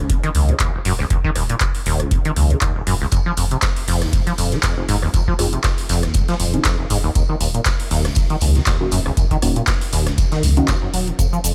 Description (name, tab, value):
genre	acid house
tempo	119 BPM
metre	4/4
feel	swing 55% on 16ths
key	unclear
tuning	A4 = 440 Hz
part	liquid acid bass	riff	0.0-11.5 s	Eb1 to Gb3	-24 LUFS	equal	tube saturation, lush chorus, delay
part	warm sub bass	bass	0.0-11.5 s	Eb1 to Db2	-22 LUFS	equal	tube saturation, sidechain pumping
part	booming analog drum machine	drums	0.1-11.5 s	handclaps, hi-hat, rim click, shaker	-27 LUFS	equal	none
part	electronic kick drum	drums	0.1-11.3 s	none	-22 LUFS	equal	none
part	raw garage drum kit	drums	3.1-11.5 s	hi-hat, snare drum, tambourine	-33 LUFS	equal	sidechain pumping on hats, high-pass filter on hats, high-pass filter on snare, sidechain pumping on perc, high-pass filter on perc, high-pass filter on room
part	deep mellow chord stab	stabs	4.8-10.7 s	Bb3 to Ab4	-27 LUFS	equal	chorus, phaser, vintage 12-bit sampler grit, delay
room	studio reverb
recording	none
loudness	-18 LUFS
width	mono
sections	0.0-11.5 A section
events	filter sweep on acid bass 0.0-11.5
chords	0.0 Eb7(no3); 3.1 Fm7; 7.2 Ebm7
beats	0.10 0.60 | 1.10 1.61 2.11 2.62 | 3.12 3.62 4.13 4.63 | 5.14 5.64 6.15 6.65 | 7.16 7.66 8.16 8.67 | 9.17 9.68 10.18 10.68 | 11.19